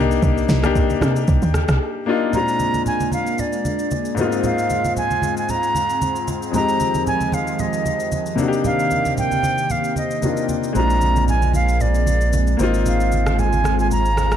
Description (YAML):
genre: amapiano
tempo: 114 BPM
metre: 4/4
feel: swing 55% on 16ths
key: unclear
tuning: A4 = 442 Hz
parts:
  - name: clear baby grand piano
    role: accompaniment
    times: 0.0-14.4 s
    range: F2 to G4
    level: -23 LUFS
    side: left 5 dB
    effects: none
  - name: tight log drum bass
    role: bass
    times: 0.0-1.8 s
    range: C2 to C3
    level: -19 LUFS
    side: right 1 dB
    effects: none
  - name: smooth R&B drum kit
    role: drums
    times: 0.1-14.4 s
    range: kick drum, rim click, shaker, snare drum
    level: -27 LUFS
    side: equal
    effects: none
  - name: congas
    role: percussion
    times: 0.2-14.3 s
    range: none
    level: -27 LUFS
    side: right 3 dB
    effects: none
  - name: concert flute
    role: melody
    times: 2.3-14.4 s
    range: D5 to Bb5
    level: -22 LUFS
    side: right 2 dB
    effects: ping-pong delay
  - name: lush unison pad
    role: sustained chords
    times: 2.3-14.4 s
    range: C3 to F4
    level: -26 LUFS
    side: right 1 dB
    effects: chorus, phaser
  - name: sub bass with octave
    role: bass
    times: 10.8-14.4 s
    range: Ab1 to Bb1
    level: -19 LUFS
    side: equal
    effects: none
room: light reverb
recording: dark, warm production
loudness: -17 LUFS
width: side -9 dB against mid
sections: 0.0-2.3 A section; 2.3-14.4 B section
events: drop 0.0-2.3; break 1.8-2.3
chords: 0.0 Cm9; 2.3 Bb7; 4.2 Ab69; 6.5 Fm7; 8.4 Cm9; 10.8 Bb7; 12.6 Ab69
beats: | 0.23 0.75 1.28 1.80 | 2.33 2.86 3.38 3.91 | 4.44 4.96 5.49 6.01 | 6.54 7.07 7.59 8.12 | 8.65 9.17 9.70 10.22 | 10.75 11.28 11.80 12.33 | 12.86 13.38 13.91